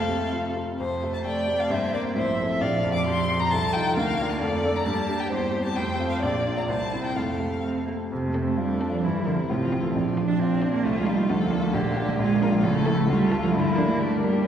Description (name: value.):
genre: quick classical-period movement for piano quintet.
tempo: 132 BPM.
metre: 2/4.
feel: straight.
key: F major.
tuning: A4 = 439 Hz.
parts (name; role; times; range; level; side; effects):
warm violin; melody; 0.0-14.5 s; D4 to D6; -29 LUFS; left 3 dB; none.
rich violin; second line; 0.0-0.5, 8.3-14.4 s; F4 to Bb4; -36 LUFS; left 1 dB; none.
warm cello; second line; 0.0-14.5 s; C3 to D4; -26 LUFS; right 2 dB; none.
bright grand piano; accompaniment; 0.0-14.5 s; A1 to Bb4; -27 LUFS; equal; none.
warm viola; accompaniment; 0.0-14.4 s; C4 to E5; -32 LUFS; right 1 dB; none.
room: wet concert hall reverb, RT60 2.1 s.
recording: heard from further back in the room.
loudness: -22 LUFS.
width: side -9 dB against mid.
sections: 0.8-8.1 A section; 8.1-14.5 A section.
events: none.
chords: 0.0 F; 1.7 C7/G; 2.2 F/A; 2.6 Bb; 3.5 F7/C; 4.0 Bb/D; 4.4 Dm/F; 4.9 Gm; 5.3 C/E; 5.8 F; 6.2 Bb; 6.7 C7; 7.2 F; 9.0 C7/G; 9.5 F/A; 9.9 Bb; 10.8 F7/C; 11.3 Bb/D; 11.7 Gm/Bb; 12.2 Bb7; 12.6 A; 13.1 Dm; 13.5 Gm.